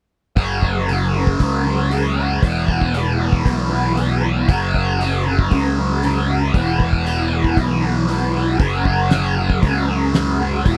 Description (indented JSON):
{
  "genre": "psychedelic rock",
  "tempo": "116 BPM",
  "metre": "4/4",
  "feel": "straight",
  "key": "unclear",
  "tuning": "A4 = 439 Hz",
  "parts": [
    { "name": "fuzz guitar", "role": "riff", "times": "0.4-10.8 s", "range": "E2 to F#3", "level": "-21 LUFS", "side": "equal", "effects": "distortion, phaser" },
    { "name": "picked electric bass", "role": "bass", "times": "0.4-10.8 s", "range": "E1 to C#2", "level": "-23 LUFS", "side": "equal", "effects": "none" },
    { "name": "cloth-damped thuddy drum kit", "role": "drums", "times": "0.4-10.8 s", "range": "hi-hat, kick drum, snare drum", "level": "-21 LUFS", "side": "equal", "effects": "none" }
  ],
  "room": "light reverb",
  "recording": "none",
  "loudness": "-18 LUFS",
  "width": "mono",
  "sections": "0.4-10.8 A section",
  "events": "none",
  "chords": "0.4 F#5; 2.4 E5; 4.5 F#5; 6.5 E5; 8.6 F#5",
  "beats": "| 0.36 0.88 1.39 1.91 | 2.42 2.94 3.45 3.96 | 4.48 5.00 5.51 6.03 | 6.54 7.06 7.57 8.09 | 8.60 9.12 9.63 10.15 | 10.66"
}